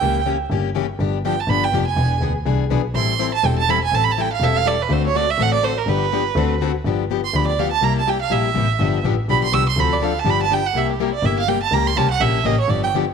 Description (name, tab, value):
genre	acoustic string swing (jazz manouche)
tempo	246 BPM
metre	4/4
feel	swing 57% on 8ths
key	G mixolydian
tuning	A4 = 439 Hz
part	rich violin	melody	0.0-12.9 s	G4 to E6	-20 LUFS	right 10 dB	none
part	picked plugged-in steel-string acoustic guitar	accompaniment	0.0-13.0 s	C3 to A4	-22 LUFS	left 13 dB	none
part	warm double bass	bass	0.0-13.1 s	E1 to D2	-21 LUFS	equal	none
room	light reverb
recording	1960s-style stereo with parts hard left and right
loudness	-17 LUFS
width	side -6 dB against mid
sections	0.0-6.8 A section; 6.8-13.1 A section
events	violin solo 0.0-13.1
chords	0.0 C#dim7; 1.0 G7; 2.0 E7; 2.9 Am7; 4.9 D7; 5.9 G7; 6.4 D7; 6.8 G7; 7.8 C7; 8.8 G7; 9.8 Dm7; 10.3 G7; 10.7 C7; 11.7 C#dim7